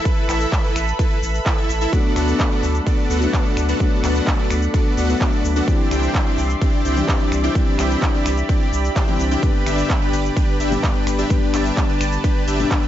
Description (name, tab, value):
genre	EDM, festival progressive house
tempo	128 BPM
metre	4/4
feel	straight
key	G major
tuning	A4 = 440 Hz
part	lush unison pad	sustained chords	0.0-12.9 s	G4 to C6	-27 LUFS	right 2 dB	chorus, sidechain pumping
part	dense compressed supersaw	riff	0.0-12.9 s	B3 to G5	-24 LUFS	equal	sidechain pumping, digital delay
part	big-room dance drum kit	drums	0.1-12.9 s	finger snaps, handclaps, hi-hat, ride cymbal, shaker	-28 LUFS	equal	overdrive
part	electronic kick drum	drums	0.1-12.8 s	none	-19 LUFS	equal	none
part	saturated sub bass	bass	0.3-12.7 s	G1 to D2	-22 LUFS	equal	sidechain pumping
part	dark concert grand piano	accompaniment	1.9-12.9 s	G2 to D4	-24 LUFS	left 4 dB	vintage 12-bit sampler grit, sidechain pumping, digital delay
room	little or no reverb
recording	nothing above 7.7 kHz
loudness	-16 LUFS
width	side -12 dB against mid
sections	0.0-12.9 A section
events	none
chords	0.0 Asus2; 1.9 D6; 5.7 Cadd9; 9.4 G